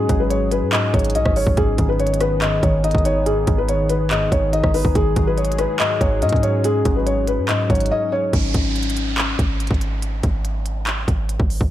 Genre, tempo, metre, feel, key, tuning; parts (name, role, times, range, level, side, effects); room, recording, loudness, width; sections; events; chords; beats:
hip hop, trap; 142 BPM; 4/4; half-time; A4 = 441 Hz
felt-muted upright piano; melody; 0.0-8.3 s; G#4 to D#5; -21 LUFS; left 1 dB; low-pass filter
concert harp; accompaniment; 0.0-11.0 s; G#2 to D#4; -25 LUFS; left 2 dB
warm analog pad; sustained chords; 0.0-8.3 s; D#3 to G#4; -29 LUFS; equal; chorus
warm 808-style bass; bass; 0.0-11.7 s; G#1 to G#2; -22 LUFS; equal
trap drum kit; drums; 0.1-11.7 s; handclaps, hi-hat, kick drum, rim click; -21 LUFS; equal
downlifter; sound effects; 8.3-11.7 s; -30 LUFS; right 3 dB
light reverb; -16 LUFS; side -13 dB against mid
0.0-8.3 A section; 8.3-11.7 B section
drums muted 7.9-8.3; break 8.3-11.7
0.0 F#sus2/G#; 1.6 G#m; 5.0 F#sus2/G#; 8.3 N.C.
0.30 0.73 1.15 | 1.57 2.00 2.42 2.84 | 3.26 3.69 4.11 4.53 | 4.95 5.38 5.80 6.22 | 6.64 7.07 7.49 7.91 | 8.33 8.76 9.18 9.60 | 10.02 10.45 10.87 11.29